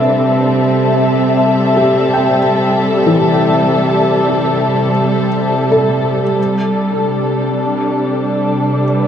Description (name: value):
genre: ambient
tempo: free time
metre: none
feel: none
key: unclear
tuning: A4 = 439 Hz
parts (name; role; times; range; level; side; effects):
- dark studio string section; sustained chords; 0.0-9.1 s; G3 to E5; -13 LUFS; left 1 dB; none
- felt-muted upright piano; arpeggios; 0.0-9.1 s; E3 to G5; -19 LUFS; equal; analog delay
- bowed-like drone; drone; 0.0-9.1 s; C3; -18 LUFS; equal; built-in reverb
room: wet spring reverb, RT60 2.2 s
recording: echo-heavy mix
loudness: -11 LUFS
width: side -8 dB against mid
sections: 0.0-9.1 A section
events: none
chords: 0.0 Am7; 6.4 G5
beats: free time